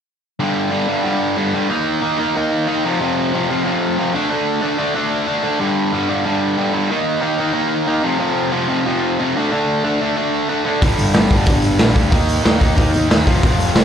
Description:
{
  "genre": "punk rock",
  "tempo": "184 BPM",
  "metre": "4/4",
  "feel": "straight",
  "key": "G minor",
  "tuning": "A4 = 441 Hz",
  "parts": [
    { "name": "distorted electric guitar", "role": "riff", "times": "0.4-13.8 s", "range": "F2 to Eb4", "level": "-16 LUFS", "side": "equal", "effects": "overdrive, slapback echo" },
    { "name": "fuzz picked electric bass", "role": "bass", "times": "10.8-13.8 s", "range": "F1 to Eb2", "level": "-19 LUFS", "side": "equal", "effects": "overdrive" },
    { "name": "raw garage drum kit", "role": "drums", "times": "10.8-13.8 s", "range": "hi-hat, kick drum, snare drum", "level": "-15 LUFS", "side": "equal", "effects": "none" }
  ],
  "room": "light reverb",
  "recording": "live gig heard through the venue's PA, club reverb",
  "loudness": "-15 LUFS",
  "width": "side -8 dB against mid",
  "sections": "0.4-13.8 A section",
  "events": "none",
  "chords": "0.4 G5; 1.7 Eb5; 2.9 F5; 4.2 D5; 5.6 G5; 6.9 Eb5; 8.0 F5; 9.3 D5; 10.8 G5; 12.1 Eb5; 13.3 F5"
}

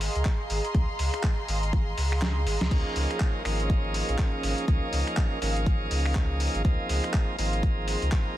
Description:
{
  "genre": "deep house",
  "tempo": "122 BPM",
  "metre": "4/4",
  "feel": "swing 60% on 16ths",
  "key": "unclear",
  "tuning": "A4 = 440 Hz",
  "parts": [
    { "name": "airy breathy pad", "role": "sustained chords", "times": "0.0-8.4 s", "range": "Ab4 to Eb6", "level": "-37 LUFS", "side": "right 1 dB", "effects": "chorus, sidechain pumping" },
    { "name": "sub bass with octave", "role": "bass", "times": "0.0-8.1 s", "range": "Ab1 to Db2", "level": "-28 LUFS", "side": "equal", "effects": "sidechain pumping" },
    { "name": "dusty soul sampler-style drum kit", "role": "drums", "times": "0.0-8.2 s", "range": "crash cymbal, finger snaps, handclaps, hi-hat, snare drum", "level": "-34 LUFS", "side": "left 1 dB", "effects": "small room ambience, soft clipping on snare" },
    { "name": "dark chamber string section", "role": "texture", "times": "0.0-8.4 s", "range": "Db4 to C6", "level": "-36 LUFS", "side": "right 1 dB", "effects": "sidechain pumping" },
    { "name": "electronic kick drum", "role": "drums", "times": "0.3-8.2 s", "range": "none", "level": "-25 LUFS", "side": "equal", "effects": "small room ambience" },
    { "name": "bright tonewheel organ", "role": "stabs", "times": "2.7-8.4 s", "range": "F3 to Ab4", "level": "-32 LUFS", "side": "right 2 dB", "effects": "overdrive, stopped rotary speaker, sidechain pumping, ping-pong delay" }
  ],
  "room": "little or no reverb",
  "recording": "dense, heavily limited modern master, vinyl crackle",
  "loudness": "-24 LUFS",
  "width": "side -14 dB against mid",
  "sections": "0.0-8.4 A section",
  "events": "kick drops out 2.2-2.7; drum fill 2.2-2.7",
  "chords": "0.0 Ab6"
}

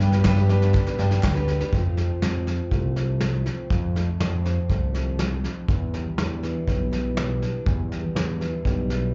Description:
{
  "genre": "indie folk with a building arrangement",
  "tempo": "122 BPM",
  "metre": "4/4",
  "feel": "straight",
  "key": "unclear",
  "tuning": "A4 = 439 Hz",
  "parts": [
    { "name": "picked steel-string acoustic guitar", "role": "accompaniment", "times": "0.0-1.7 s", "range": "G3 to B4", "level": "-29 LUFS", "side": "equal", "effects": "slapback echo" },
    { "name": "clear brass ensemble", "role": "sustained chords", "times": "0.0-1.7 s", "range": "B3 to G4", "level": "-42 LUFS", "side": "equal", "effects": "none" },
    { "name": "fat analog bass", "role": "bass", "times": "0.0-9.1 s", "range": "B1 to G2", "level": "-26 LUFS", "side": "equal", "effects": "none" },
    { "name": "soft brush drum kit", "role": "drums", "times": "0.0-9.0 s", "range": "kick drum, snare drum", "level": "-28 LUFS", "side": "equal", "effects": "none" },
    { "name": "group handclap", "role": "percussion", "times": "0.2-1.3 s", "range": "none", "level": "-41 LUFS", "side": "equal", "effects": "none" },
    { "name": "tambourine", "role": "percussion", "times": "0.3-1.4 s", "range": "none", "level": "-50 LUFS", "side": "equal", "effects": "none" },
    { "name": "fingerpicked steel-string acoustic guitar", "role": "accompaniment", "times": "1.7-9.1 s", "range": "E2 to F4", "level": "-34 LUFS", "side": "equal", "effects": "slapback echo" }
  ],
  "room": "little or no reverb",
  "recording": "live gig heard through the venue's PA, club reverb, nothing above 7.6 kHz",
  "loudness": "-24 LUFS",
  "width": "mono",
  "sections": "0.0-1.7 A section; 1.7-9.1 B section",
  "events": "none",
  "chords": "0.0 G; 1.7 F; 5.7 Em7"
}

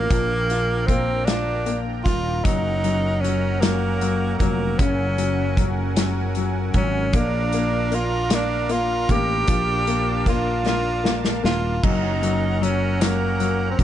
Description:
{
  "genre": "six-eight pop ballad",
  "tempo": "51 BPM (dotted quarters)",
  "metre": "6/8",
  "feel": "straight",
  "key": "unclear",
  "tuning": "A4 = 442 Hz",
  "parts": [
    { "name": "bright tenor saxophone", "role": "melody", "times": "0.0-13.8 s", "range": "Bb3 to G4", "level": "-24 LUFS", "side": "right 1 dB", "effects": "none" },
    { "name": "clear upright piano", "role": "accompaniment", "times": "0.0-13.8 s", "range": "Db3 to F4", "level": "-26 LUFS", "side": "left 8 dB", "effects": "none" },
    { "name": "musette accordion", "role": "sustained chords", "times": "0.0-13.8 s", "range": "Db4 to Bb5", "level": "-31 LUFS", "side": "right 4 dB", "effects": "none" },
    { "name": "sustaining fretless electric bass", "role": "bass", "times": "0.0-13.8 s", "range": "Eb1 to Bb1", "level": "-25 LUFS", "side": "right 1 dB", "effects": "wide subtle chorus" },
    { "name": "loose indie drum kit", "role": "drums", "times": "0.1-13.8 s", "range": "crash cymbal, hi-hat, kick drum, snare drum", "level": "-23 LUFS", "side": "equal", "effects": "none" }
  ],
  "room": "small room ambience",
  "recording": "dark, warm production, nothing above 10.3 kHz",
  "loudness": "-19 LUFS",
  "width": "side -11 dB against mid",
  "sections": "0.0-13.8 A section",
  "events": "drum fill 10.7-11.8",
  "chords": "0.0 Bb; 2.5 Gb; 7.1 Bb; 11.8 Gb"
}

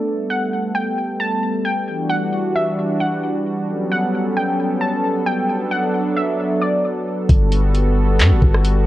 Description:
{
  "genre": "hip hop, atmospheric cloud-rap",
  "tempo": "133 BPM",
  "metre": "4/4",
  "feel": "half-time",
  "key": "unclear",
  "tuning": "A4 = 441 Hz",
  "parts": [
    { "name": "warbly dusty pluck", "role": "melody", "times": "0.0-7.3 s", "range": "D5 to A5", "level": "-22 LUFS", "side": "equal", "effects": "chorus, ping-pong delay" },
    { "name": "warm analog pad", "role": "sustained chords", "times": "0.0-8.9 s", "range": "E3 to A4", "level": "-20 LUFS", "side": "equal", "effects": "chorus, sidechain pumping" },
    { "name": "long sustained 808-style bass", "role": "bass", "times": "7.3-8.9 s", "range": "G1 to G2", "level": "-15 LUFS", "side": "equal", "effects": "none" },
    { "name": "smooth R&B drum kit", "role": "drums", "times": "7.3-8.8 s", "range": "handclaps, hi-hat, kick drum, rim click", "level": "-16 LUFS", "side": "equal", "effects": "none" }
  ],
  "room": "light reverb",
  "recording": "worn, warbling old tape, cassette tape, warbly pitch drift",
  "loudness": "-16 LUFS",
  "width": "side -15 dB against mid",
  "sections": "0.0-7.3 A section; 7.3-8.9 B section",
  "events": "none",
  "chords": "0.1 Gmaj9; 1.9 Em9; 3.7 A13; 5.5 Bm7; 7.3 Gmaj9"
}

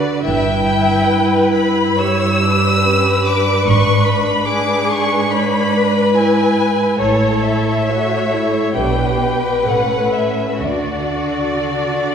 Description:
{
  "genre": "classical, slow romantic movement for string orchestra",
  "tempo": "60-76 BPM",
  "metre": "4/4",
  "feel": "rubato",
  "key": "unclear",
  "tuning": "A4 = 438 Hz",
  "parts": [
    { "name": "rich chamber violin section", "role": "second line", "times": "0.0-12.1 s", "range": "F#4 to E5", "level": "-20 LUFS", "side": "left 2 dB", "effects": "none" },
    { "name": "rich chamber viola section", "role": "accompaniment", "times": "0.0-12.1 s", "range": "B3 to C#5", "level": "-20 LUFS", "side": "equal", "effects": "none" },
    { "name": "warm studio cello section", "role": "bass", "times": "0.0-12.1 s", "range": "G2 to D3", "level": "-20 LUFS", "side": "right 3 dB", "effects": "none" },
    { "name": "rich chamber violin section", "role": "melody", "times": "0.3-12.1 s", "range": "C#5 to E6", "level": "-19 LUFS", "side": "left 2 dB", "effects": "none" },
    { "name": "rich chamber double bass section", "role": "bass", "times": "0.3-11.6 s", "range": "G1 to D2", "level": "-23 LUFS", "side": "right 2 dB", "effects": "none" }
  ],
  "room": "wet concert hall reverb, RT60 2.0 s",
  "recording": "heard from further back in the room",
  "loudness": "-13 LUFS",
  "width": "side -7 dB against mid",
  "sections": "0.0-12.1 A section",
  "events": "none",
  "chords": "0.3 Em/G; 3.7 E7/G#; 7.0 A; 8.8 G/B; 9.7 Aadd9; 10.6 D"
}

